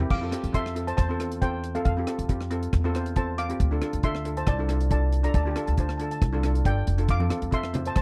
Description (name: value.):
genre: calypso.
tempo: 138 BPM.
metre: 4/4.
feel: straight.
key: F major.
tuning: A4 = 440 Hz.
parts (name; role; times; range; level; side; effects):
steel pan; melody; 0.0-8.0 s; A4 to D6; -34 LUFS; equal; none.
steel pan; accompaniment; 0.0-7.9 s; C4 to C5; -34 LUFS; equal; none.
upright bass; bass; 0.0-8.0 s; F1 to F2; -29 LUFS; equal; none.
deep reggae drum kit; drums; 0.0-8.0 s; crash cymbal, hi-hat, kick drum, rim click, toms; -30 LUFS; equal; none.
congas; percussion; 7.2-7.8 s; none; -36 LUFS; equal; none.
room: small room ambience.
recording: dry, close 1970s-style studio recording.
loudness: -26 LUFS.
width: mono.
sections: 0.1-8.0 A section.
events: none.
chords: 0.1 Fmaj7; 3.6 Dm; 7.1 Fmaj7.